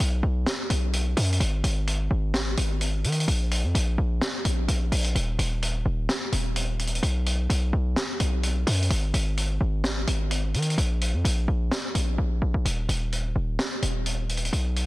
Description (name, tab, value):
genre	hip hop, trap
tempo	128 BPM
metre	4/4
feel	half-time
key	unclear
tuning	A4 = 439 Hz
part	hard-hitting 808-style bass	bass	0.0-14.9 s	Eb1 to Eb3	-24 LUFS	equal	none
part	vintage drum kit	drums	0.0-14.9 s	hi-hat, snare drum	-29 LUFS	equal	vintage 12-bit sampler grit
room	little or no reverb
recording	dense, heavily limited modern master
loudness	-23 LUFS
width	side -19 dB against mid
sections	0.0-12.7 A section; 12.7-14.9 B section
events	drum fill 12.2-12.7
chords	none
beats	0.00 0.47 0.93 | 1.40 1.87 2.34 2.81 | 3.28 3.75 4.21 4.68 | 5.15 5.62 6.09 6.56 | 7.03 7.50 7.96 8.43 | 8.90 9.37 9.84 10.31 | 10.78 11.25 11.71 12.18 | 12.65 13.12 13.59 14.06 | 14.53